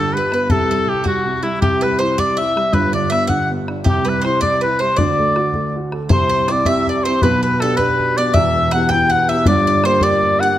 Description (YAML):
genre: celtic folk, Celtic jig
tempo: 107 BPM (dotted quarters)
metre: 6/8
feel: straight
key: unclear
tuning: A4 = 440 Hz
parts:
  - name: warm oboe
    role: melody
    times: 0.0-10.6 s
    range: E4 to G5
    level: -18 LUFS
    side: left 2 dB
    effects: none
  - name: bowl-back mandolin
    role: second line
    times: 0.0-10.6 s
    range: E4 to G5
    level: -23 LUFS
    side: right 3 dB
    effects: none
  - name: warm upright piano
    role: accompaniment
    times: 0.0-10.6 s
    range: E1 to A4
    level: -19 LUFS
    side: right 1 dB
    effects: none
  - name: bodhran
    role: percussion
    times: 0.3-10.5 s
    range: none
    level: -21 LUFS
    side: left 1 dB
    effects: none
room: moderate recital hall reverb, RT60 1.6 s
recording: close, detailed microphones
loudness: -14 LUFS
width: side -12 dB against mid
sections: 0.0-6.1 A section; 6.1-10.6 B section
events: none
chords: 0.5 C5; 1.6 C; 2.7 G; 3.9 C; 5.0 D; 6.1 C; 7.2 G/B; 8.3 Em; 9.5 Gm